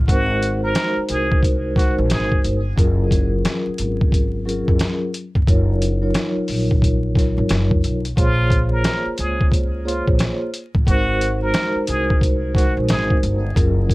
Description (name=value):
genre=hip hop, boom-bap hip-hop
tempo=89 BPM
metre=4/4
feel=swing 62% on 16ths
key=unclear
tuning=A4 = 440 Hz
part: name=upright bass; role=bass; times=0.0-13.9 s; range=Gb1 to Db2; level=-21 LUFS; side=equal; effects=none
part: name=trumpet with plunger mute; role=melody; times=0.1-2.4, 8.2-13.2 s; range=F4 to Bb4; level=-25 LUFS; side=equal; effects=tape echo
part: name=vibraphone with soft mallets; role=accompaniment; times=0.1-13.9 s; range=Gb3 to Db5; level=-22 LUFS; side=equal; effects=none
part: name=boom bap sampler-style drum kit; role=drums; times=0.1-13.9 s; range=hi-hat, kick drum, snare drum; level=-19 LUFS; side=equal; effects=vintage 12-bit sampler grit
room=little or no reverb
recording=vinyl crackle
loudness=-16 LUFS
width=side -20 dB against mid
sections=0.0-13.9 A section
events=none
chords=0.1 Ab7; 2.8 Gbmaj7; 5.5 Ebm9/Gb; 8.2 Bbm7; 10.9 Ab7